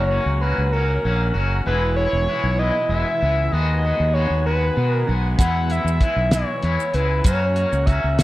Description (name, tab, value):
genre	psychedelic rock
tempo	64 BPM (dotted quarters)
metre	6/8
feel	straight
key	E lydian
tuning	A4 = 441 Hz
part	overdriven synth lead	melody	0.0-8.2 s	A#4 to F#5	-23 LUFS	equal	slapback echo
part	tonewheel organ	sustained chords	0.0-8.2 s	E4 to A#5	-34 LUFS	right 3 dB	slow rotary speaker, chorus vibrato
part	twangy electric guitar	riff	0.0-8.2 s	E2 to F#4	-26 LUFS	left 3 dB	harmonic tremolo
part	fuzz fingered electric bass	bass	0.0-8.2 s	E1 to B2	-21 LUFS	equal	overdrive
part	cloth-damped thuddy drum kit	drums	5.4-8.2 s	hi-hat, kick drum, snare drum	-18 LUFS	equal	none
part	maracas	percussion	5.4-8.2 s	none	-35 LUFS	right 22 dB	none
room	little or no reverb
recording	dry, close 1970s-style studio recording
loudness	-18 LUFS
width	side -16 dB against mid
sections	0.0-8.2 A section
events	none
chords	0.0 F#; 1.7 E; 3.5 G#m7/D#; 5.4 E; 7.3 F#